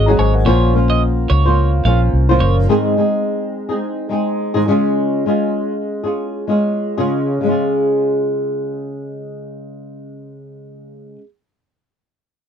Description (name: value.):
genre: acoustic pop.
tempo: 92-108 BPM.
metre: 4/4.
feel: swing 55% on 16ths.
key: Db major.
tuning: A4 = 441 Hz.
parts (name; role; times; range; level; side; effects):
dark upright piano; accompaniment; 0.0-2.7 s; Ab3 to Bb5; -24 LUFS; left 7 dB; none.
flamenco guitar; accompaniment; 0.0-11.3 s; Ab2 to C5; -17 LUFS; equal; double-tracked left and right.
twelve-string electric guitar; arpeggios; 0.0-2.6 s; Db5 to F5; -22 LUFS; right 6 dB; none.
vintage muted fingered electric bass; bass; 0.0-2.7 s; Gb1 to Db2; -14 LUFS; equal; none.
room: little or no reverb.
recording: dry, close 1970s-style studio recording.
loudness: -14 LUFS.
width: side -8 dB against mid.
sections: 0.0-7.4 A section; 7.4-10.1 B section.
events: slowing down 2.7-7.4.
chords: 0.5 Bbmadd9; 2.7 Ab; 4.7 Db.